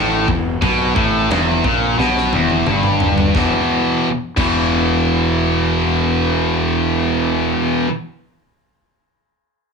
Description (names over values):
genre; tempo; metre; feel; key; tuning
heavy metal; 88 BPM; 4/4; straight; E minor; A4 = 440 Hz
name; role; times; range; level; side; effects
high-gain distorted guitar; riff; 0.0-7.9 s; E2 to E3; -15 LUFS; equal; distortion
fuzz fingered electric bass; bass; 0.0-7.5 s; E1 to B1; -22 LUFS; left 1 dB; overdrive
big rock drum kit; drums; 0.3-4.6 s; crash cymbal, kick drum, snare drum, toms; -22 LUFS; equal; none
room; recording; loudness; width
light reverb; small room ambience; -14 LUFS; side -5 dB against mid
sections
0.0-3.3 A section; 3.3-6.1 B section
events
drum fill 2.0-3.3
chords
0.0 Em; 3.3 E5